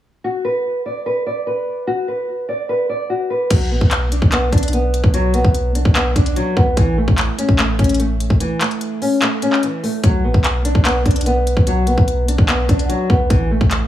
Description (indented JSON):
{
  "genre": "hip hop, trap",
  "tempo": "147 BPM",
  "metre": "4/4",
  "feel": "half-time",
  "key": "unclear",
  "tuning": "A4 = 440 Hz",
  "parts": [
    { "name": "nylon-string guitar", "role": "melody", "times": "0.2-13.9 s", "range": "E3 to D5", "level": "-19 LUFS", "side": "equal", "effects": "low-pass filter" },
    { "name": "clean 808-style bass", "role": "bass", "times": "3.5-13.8 s", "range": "A1 to B1", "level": "-19 LUFS", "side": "equal", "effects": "none" },
    { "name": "trap drum kit", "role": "drums", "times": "3.5-13.8 s", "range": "crash cymbal, handclaps, hi-hat, kick drum", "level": "-16 LUFS", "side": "equal", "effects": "none" }
  ],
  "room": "digital ambience",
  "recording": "small room ambience",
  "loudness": "-14 LUFS",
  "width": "side -12 dB against mid",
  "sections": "0.2-3.5 A section; 3.5-13.9 B section",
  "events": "break 8.4-10.0",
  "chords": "0.2 N.C.; 3.5 Asus4 (rootless); 6.8 A; 10.0 Asus4 (rootless); 13.3 A5"
}